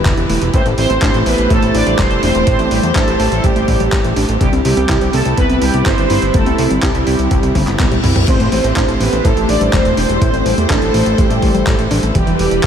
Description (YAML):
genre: italo disco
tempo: 124 BPM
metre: 4/4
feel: straight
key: A minor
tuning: A4 = 440 Hz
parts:
  - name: dark studio string section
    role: sustained chords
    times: 0.0-12.7 s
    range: E3 to C5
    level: -19 LUFS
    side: right 1 dB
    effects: none
  - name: fat analog bass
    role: bass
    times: 0.0-12.7 s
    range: E1 to A2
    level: -18 LUFS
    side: equal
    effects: none
  - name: warbly dusty pluck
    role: arpeggios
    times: 0.1-12.7 s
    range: D3 to C5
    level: -22 LUFS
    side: left 1 dB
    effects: chorus, cassette tape, tape echo
  - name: dusty soul sampler-style drum kit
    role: drums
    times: 0.1-12.7 s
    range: crash cymbal, handclaps, hi-hat, toms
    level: -22 LUFS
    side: equal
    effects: overdrive
  - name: electronic kick drum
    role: drums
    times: 0.1-12.7 s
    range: none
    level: -17 LUFS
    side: equal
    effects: overdrive
  - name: mellow synth brass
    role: melody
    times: 0.5-12.7 s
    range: G3 to D5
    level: -18 LUFS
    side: right 2 dB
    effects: chorus, vintage 12-bit sampler grit, analog delay
  - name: reverse cymbal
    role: sound effects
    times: 7.6-8.3 s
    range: none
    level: -29 LUFS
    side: left 5 dB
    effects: none
room: moderate huge ambient reverb, RT60 7.6 s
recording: dreamy mix soaked in reverb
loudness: -11 LUFS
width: side -8 dB against mid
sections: 0.0-12.7 A section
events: drum fill 7.6-8.3; reverse cymbal 7.6-8.3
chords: 0.0 Em; 0.5 Am7; 4.4 C; 8.3 Am7; 12.2 Em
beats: 0.05 | 0.54 1.02 1.50 1.99 | 2.47 2.96 3.44 3.92 | 4.41 4.89 5.38 5.86 | 6.34 6.83 7.31 7.79 | 8.28 8.76 9.25 9.73 | 10.21 10.70 11.18 11.67 | 12.15 12.63